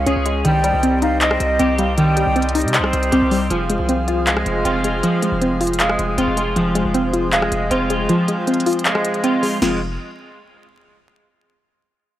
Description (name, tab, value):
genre	hip hop, trap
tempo	157 BPM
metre	4/4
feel	half-time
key	F minor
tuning	A4 = 439 Hz
part	breathy concert flute	second line	0.0-3.5 s	C5 to G5	-22 LUFS	right 1 dB	tape echo
part	warbly dusty pluck	accompaniment	0.0-9.8 s	Eb3 to F5	-19 LUFS	equal	chorus, low-pass filter
part	pedal harmonium	sustained chords	0.0-9.8 s	C4 to G5	-26 LUFS	right 1 dB	none
part	electric guitar at the edge of break-up	arpeggios	0.0-9.8 s	F3 to Ab4	-23 LUFS	equal	ensemble chorus, low-pass filter, tape echo
part	hard-hitting 808-style bass	bass	0.0-10.0 s	F1 to C3	-23 LUFS	equal	none
part	trap drum kit	drums	0.1-9.7 s	crash cymbal, handclaps, hi-hat, rim click, snare drum	-22 LUFS	left 1 dB	none
room	little or no reverb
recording	dry, gritty hardware recording, vinyl crackle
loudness	-15 LUFS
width	side -13 dB against mid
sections	0.0-3.5 A section; 3.5-9.6 B section; 9.6-11.1 C section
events	kick muted 8.1-9.6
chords	0.4 Cm; 3.5 Fm